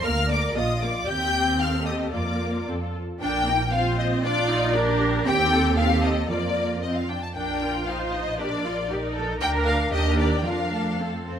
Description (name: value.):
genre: quick classical-period movement for string orchestra.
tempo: 115 BPM.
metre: 2/4.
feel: straight.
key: Bb major.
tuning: A4 = 440 Hz.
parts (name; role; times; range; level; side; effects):
rich symphonic violin section; melody; 0.0-11.3 s; D5 to G6; -28 LUFS; left 3 dB; none.
rich studio violin section; second line; 0.0-11.4 s; A4 to A5; -30 LUFS; left 2 dB; none.
rich symphonic viola section; accompaniment; 0.0-11.3 s; Bb3 to C5; -28 LUFS; right 1 dB; none.
warm symphonic cello section; bass; 0.0-11.4 s; A3 to Bb4; -30 LUFS; right 1 dB; none.
rich symphonic double bass section; bass; 0.1-11.3 s; Bb1 to F2; -27 LUFS; right 2 dB; none.
room: moderate scoring stage reverb, RT60 1.6 s.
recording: none.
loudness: -21 LUFS.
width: side -8 dB against mid.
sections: 0.0-3.2 A section; 3.2-11.4 B section.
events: none.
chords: 0.0 Bb/D; 0.6 Bb; 1.1 Cm/Eb; 2.1 Bb/F; 2.7 F; 3.2 Bb; 3.7 F5/Bb; 4.2 Bb; 4.8 Bb6; 5.3 Cm/Eb; 6.3 Bb/F; 6.8 F5; 7.4 Bb; 7.9 F5/Bb; 8.4 Bb; 8.9 Eb/Bb; 9.4 Bb/D; 9.9 Ebmaj7; 10.5 Bb/F.